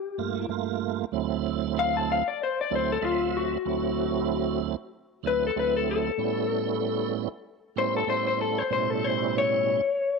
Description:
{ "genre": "blues", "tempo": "95 BPM", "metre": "4/4", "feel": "swing 56% on 16ths", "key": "D mixolydian", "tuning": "A4 = 440 Hz", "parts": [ { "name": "electric guitar through a small old amp", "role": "melody", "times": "0.0-10.2 s", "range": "F4 to A5", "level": "-26 LUFS", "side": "left 7 dB", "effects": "none" }, { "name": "tonewheel organ", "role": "accompaniment", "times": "0.2-9.8 s", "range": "D2 to E5", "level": "-28 LUFS", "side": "right 12 dB", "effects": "overdrive, chorus vibrato, slow rotary speaker" } ], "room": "wet spring reverb, RT60 1.3 s", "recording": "1960s-style stereo with parts hard left and right, lossy compression artefacts", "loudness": "-24 LUFS", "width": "side -4 dB against mid", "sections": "0.0-10.2 A section", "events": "clean electric guitar solo 0.0-10.2", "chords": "0.0 Gm7; 1.1 D9; 6.2 A9" }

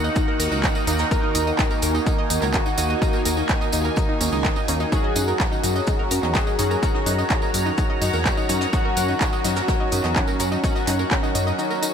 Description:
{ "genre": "melodic techno", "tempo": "126 BPM", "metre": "4/4", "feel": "straight", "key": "unclear", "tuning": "A4 = 440 Hz", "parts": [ { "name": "sweeping resonant pad", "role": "sustained chords", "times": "0.0-11.9 s", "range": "Eb4 to Bb5", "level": "-29 LUFS", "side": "equal", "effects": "chorus, sidechain pumping" }, { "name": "analog pluck", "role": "arpeggios", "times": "0.0-11.9 s", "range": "Db4 to Eb5", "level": "-28 LUFS", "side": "equal", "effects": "chorus, sidechain pumping, ping-pong delay" }, { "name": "sync-sweep polysynth", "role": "stabs", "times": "0.0-11.9 s", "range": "Eb3 to Gb4", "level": "-27 LUFS", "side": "equal", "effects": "chorus, sidechain pumping, ping-pong delay" }, { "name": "swelling detuned saw bass", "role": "bass", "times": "0.0-11.5 s", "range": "Db2 to Gb2", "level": "-24 LUFS", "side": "equal", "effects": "tube saturation, sidechain pumping" }, { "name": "tambourine", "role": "percussion", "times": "0.0-11.9 s", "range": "none", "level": "-33 LUFS", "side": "right 3 dB", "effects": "none" }, { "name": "electronic kick drum", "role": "drums", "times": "0.2-11.2 s", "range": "none", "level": "-23 LUFS", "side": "equal", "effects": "none" }, { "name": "jazz brush drum kit", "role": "drums", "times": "0.2-11.9 s", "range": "hi-hat, shaker, snare drum", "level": "-38 LUFS", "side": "left 1 dB", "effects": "none" }, { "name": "techno drum kit", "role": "drums", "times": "0.4-11.9 s", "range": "handclaps, hi-hat", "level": "-29 LUFS", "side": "right 1 dB", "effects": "none" }, { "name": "analog synth brass", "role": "melody", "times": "1.1-11.0 s", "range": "Db4 to Bb4", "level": "-30 LUFS", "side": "left 1 dB", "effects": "chorus, sidechain pumping, tape echo" } ], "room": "moderate huge ambient reverb, RT60 5.0 s", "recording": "dreamy mix soaked in reverb", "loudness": "-19 LUFS", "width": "side -7 dB against mid", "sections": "0.0-11.9 A section", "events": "none", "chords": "0.0 Ebm; 4.9 Gb" }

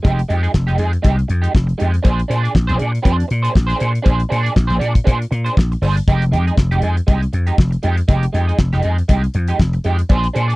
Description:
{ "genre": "disco", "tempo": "119 BPM", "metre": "4/4", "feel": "swing 56% on 16ths", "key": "F dorian", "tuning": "A4 = 438 Hz", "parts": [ { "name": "electric guitar at the edge of break-up", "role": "accompaniment", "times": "0.0-10.6 s", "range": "Ab3 to D5", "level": "-21 LUFS", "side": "right 3 dB", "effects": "wah" }, { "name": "damped 70s drum kit", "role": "drums", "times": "0.0-10.6 s", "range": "hi-hat, kick drum, snare drum", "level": "-14 LUFS", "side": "equal", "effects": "none" }, { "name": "vintage slap bass", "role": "bass", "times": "0.1-10.5 s", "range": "F1 to Bb2", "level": "-16 LUFS", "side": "equal", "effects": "none" } ], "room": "little or no reverb", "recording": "dry, close 1970s-style studio recording", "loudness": "-14 LUFS", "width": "side -21 dB against mid", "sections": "0.0-10.6 A section", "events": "none", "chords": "0.0 Fm9; 2.1 Bb9; 6.1 Fm9" }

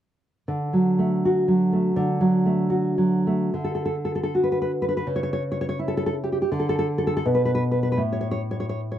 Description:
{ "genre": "romantic piece for solo classical guitar", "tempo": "69-86 BPM", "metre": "2/4", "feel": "rubato", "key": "D major", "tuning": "A4 = 439 Hz", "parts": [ { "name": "nylon-string guitar", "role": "solo", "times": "0.5-9.0 s", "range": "A2 to C#5", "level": "-21 LUFS", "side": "equal", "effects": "none" } ], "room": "light reverb", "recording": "dry, close 1970s-style studio recording", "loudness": "-21 LUFS", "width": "side -11 dB against mid", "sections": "0.5-3.5 A section; 3.5-9.0 B section", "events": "none", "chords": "0.5 D; 5.1 C#dim; 6.5 N.C." }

